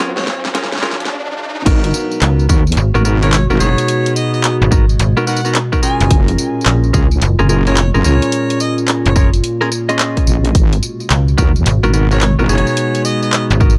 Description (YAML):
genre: glitch hop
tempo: 108 BPM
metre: 4/4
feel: swing 64% on 16ths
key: G# dorian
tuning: A4 = 438 Hz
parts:
  - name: warbly tape-like pad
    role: sustained chords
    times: 0.4-13.8 s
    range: A#2 to A#4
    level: -24 LUFS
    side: equal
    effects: chorus, built-in reverb, sidechain pumping
  - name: clean electric guitar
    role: stabs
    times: 0.0-13.7 s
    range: B3 to D#5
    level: -21 LUFS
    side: equal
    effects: sidechain pumping, analog delay
  - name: riser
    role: sound effects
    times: 0.0-1.7 s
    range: none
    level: -26 LUFS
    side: equal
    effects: none
  - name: granular cloud pad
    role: texture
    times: 0.0-1.1 s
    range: F#3 to E#5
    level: -34 LUFS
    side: equal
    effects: none
  - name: warm harmonica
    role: melody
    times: 0.2-13.4 s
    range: C#5 to G#5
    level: -25 LUFS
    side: equal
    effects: vintage 12-bit sampler grit, analog delay
  - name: pop drum kit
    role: drums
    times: 0.2-13.8 s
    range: crash cymbal, handclaps, hi-hat, rim click, snare drum, tambourine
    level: -22 LUFS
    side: equal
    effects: none
  - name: wobble bass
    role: bass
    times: 1.7-12.6 s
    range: F#1 to D#2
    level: -16 LUFS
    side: equal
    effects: chorus, tube saturation
  - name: electronic kick drum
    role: drums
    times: 1.7-13.7 s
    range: none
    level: -16 LUFS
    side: equal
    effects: none
  - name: slap-like FM bass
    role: bass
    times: 2.2-13.8 s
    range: F#1 to C#2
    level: -15 LUFS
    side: equal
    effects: none
room: little or no reverb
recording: dry, gritty hardware recording, high-pass filter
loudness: -14 LUFS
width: mono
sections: 0.0-1.7 A section; 1.7-13.8 B section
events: build-up 0.0-1.7; drum fill 0.0-1.1; riser 0.0-1.7; drop 1.7-13.8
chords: 0.0 F#maj9; 1.7 G#m7; 6.1 F#maj9; 10.6 G#m7